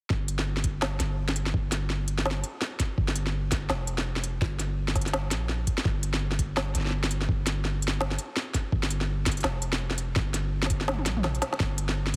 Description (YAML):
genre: half-time drum and bass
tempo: 167 BPM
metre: 4/4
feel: swing 59% on 16ths, half-time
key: G minor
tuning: A4 = 436 Hz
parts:
  - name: long sustained 808-style bass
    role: bass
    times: 0.1-12.2 s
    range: F1 to Bb1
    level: -32 LUFS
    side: equal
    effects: none
  - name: electronic kick drum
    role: drums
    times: 0.1-11.7 s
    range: none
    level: -30 LUFS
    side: equal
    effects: none
  - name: organic electronic drum kit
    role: drums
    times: 0.1-12.2 s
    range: hi-hat, snare drum, toms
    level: -32 LUFS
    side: equal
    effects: none
room: little or no reverb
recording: none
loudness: -28 LUFS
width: mono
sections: 0.1-12.2 A section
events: drum fill 10.9-11.6; kick drops out 11.2-11.6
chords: none